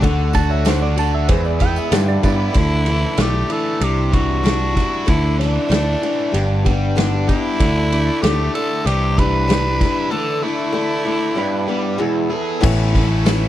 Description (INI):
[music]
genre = folk rock and heartland rock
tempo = 95 BPM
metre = 4/4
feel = straight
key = unclear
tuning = A4 = 440 Hz
[part]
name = clear grand piano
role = accompaniment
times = 0.0-2.4, 12.6-13.5 s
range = E4 to D5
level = -31 LUFS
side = left 9 dB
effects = none
[part]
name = picked old ladder-braced acoustic guitar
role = accompaniment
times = 0.0-13.5 s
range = E2 to G#4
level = -23 LUFS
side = left 4 dB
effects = none
[part]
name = mellow tonewheel organ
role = sustained chords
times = 0.0-2.5, 7.6-12.6 s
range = G4 to E6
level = -30 LUFS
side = equal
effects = slow rotary speaker
[part]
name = biting overdriven guitar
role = riff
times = 0.0-13.5 s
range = E2 to G#4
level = -25 LUFS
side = right 1 dB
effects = none
[part]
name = picked electric bass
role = bass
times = 0.0-13.5 s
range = G1 to G2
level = -19 LUFS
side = equal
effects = none
[part]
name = loose indie drum kit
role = drums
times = 0.0-13.4 s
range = crash cymbal, hi-hat, kick drum, ride cymbal, snare drum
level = -20 LUFS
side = equal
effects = none
[part]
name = clean lap steel guitar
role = second line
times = 0.3-2.5, 11.4-12.6 s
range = E4 to A5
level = -24 LUFS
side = right 9 dB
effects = none
[part]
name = tambourine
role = percussion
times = 0.3-2.4, 13.3-13.4 s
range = none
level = -39 LUFS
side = right 12 dB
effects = none
[part]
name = raspy tenor saxophone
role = melody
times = 2.3-12.3 s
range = D4 to B4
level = -22 LUFS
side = equal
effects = none
[sound]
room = little or no reverb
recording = none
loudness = -15 LUFS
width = side -13 dB against mid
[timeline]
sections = 0.0-2.6 A section; 2.6-12.6 B section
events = electric slide guitar solo 0.0-2.6; break 10.1-12.6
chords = 0.0 D; 1.3 E; 1.9 G6; 2.6 Dsus2; 3.8 Cadd9; 5.1 Dsus2; 6.3 G; 7.6 Dsus2; 8.9 Cadd9; 10.1 Dsus2; 11.4 G; 12.0 E; 12.6 Aadd9